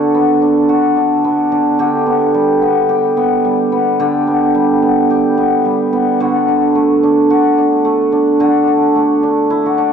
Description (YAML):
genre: folktronica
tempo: 109 BPM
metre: 4/4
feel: swing 56% on 16ths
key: unclear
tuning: A4 = 440 Hz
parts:
  - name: cimbalom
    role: solo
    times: 0.0-9.9 s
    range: D3 to G4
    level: -11 LUFS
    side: equal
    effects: vintage 12-bit sampler grit, diffuse ambient delay
room: wet plate reverb, RT60 3.3 s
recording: dreamy mix soaked in reverb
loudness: -11 LUFS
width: side -7 dB against mid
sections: 0.0-9.9 A section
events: none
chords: 0.0 Bm/D; 1.8 G/D; 6.2 D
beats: 0.14 0.69 1.25 | 1.80 2.35 2.90 3.45 | 4.00 4.55 5.10 5.65 | 6.20 6.75 7.30 7.85 | 8.40 8.95 9.50